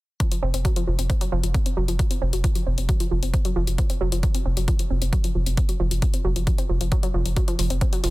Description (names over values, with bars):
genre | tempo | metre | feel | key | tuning
driving peak-time techno | 134 BPM | 4/4 | straight | unclear | A4 = 440 Hz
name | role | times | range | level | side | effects
analog pluck | riff | 0.2-8.1 s | F3 to C4 | -29 LUFS | right 1 dB | chorus, cassette tape, sidechain pumping, tape echo
electronic hi-hat | drums | 0.2-8.1 s | none | -32 LUFS | left 5 dB | overdrive
electronic kick drum | drums | 0.2-7.9 s | none | -22 LUFS | equal | overdrive
saturated sub bass | bass | 0.4-8.1 s | F1 | -23 LUFS | equal | overdrive, sidechain pumping, low-pass filter
room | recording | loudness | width
little or no reverb | dense, heavily limited modern master | -20 LUFS | side -20 dB against mid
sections
0.2-8.1 A section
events
none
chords
0.2 F5